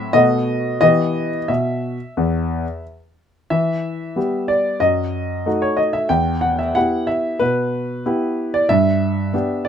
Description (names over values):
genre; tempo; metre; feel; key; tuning
classical-period piano sonatina; 91 BPM; 4/4; uneven beats; E minor; A4 = 440 Hz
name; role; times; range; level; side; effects
clear grand piano; solo; 0.0-9.7 s; E2 to G5; -17 LUFS; equal; none
room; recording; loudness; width
light reverb; none; -17 LUFS; side -8 dB against mid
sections
0.0-3.5 A section; 3.5-9.7 A section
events
none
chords
0.1 B7; 0.8 Em; 4.8 D#dim/F#; 6.1 Em; 8.7 G